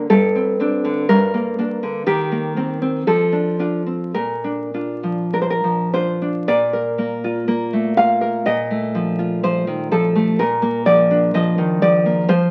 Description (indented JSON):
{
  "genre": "romantic piece for solo classical guitar",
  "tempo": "50-65 BPM",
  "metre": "2/4",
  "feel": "rubato",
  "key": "Bb major",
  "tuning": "A4 = 440 Hz",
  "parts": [
    { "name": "nylon-string guitar", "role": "solo", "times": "0.0-12.5 s", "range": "G2 to F5", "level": "-19 LUFS", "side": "equal", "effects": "none" }
  ],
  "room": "wet studio reverb, RT60 0.8 s",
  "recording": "very old 78 rpm record, vinyl crackle",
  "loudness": "-19 LUFS",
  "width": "mono",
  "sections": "0.0-6.5 A section; 6.5-12.5 B section",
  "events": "none",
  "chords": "0.1 D5/G; 1.1 Gm; 2.1 Cm7/Eb; 3.1 F6; 4.1 Bb; 8.5 F7/Bb; 10.4 Bb"
}